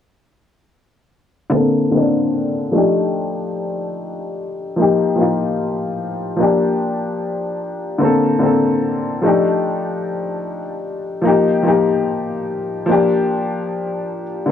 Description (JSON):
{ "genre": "hip hop", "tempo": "74 BPM", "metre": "4/4", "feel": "swing 55% on 16ths", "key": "Bb major", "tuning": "A4 = 440 Hz", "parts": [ { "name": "warm upright piano", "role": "accompaniment", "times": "1.5-14.5 s", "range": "D3 to A4", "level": "-16 LUFS", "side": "left 2 dB", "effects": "cassette tape, low-pass filter" } ], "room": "wet booth ambience, RT60 0.2 s", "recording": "worn, warbling old tape, cassette tape, warbly pitch drift", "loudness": "-16 LUFS", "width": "side -9 dB against mid", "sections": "1.5-14.5 A section", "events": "filter sweep on upright piano 1.5-14.5", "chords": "1.5 Bbmaj9; 2.7 Ebmaj9#11; 4.8 F9sus4; 6.4 Gm7; 8.0 Bbmaj9; 9.2 Ebmaj9#11; 11.3 F9sus4; 12.9 Gm7" }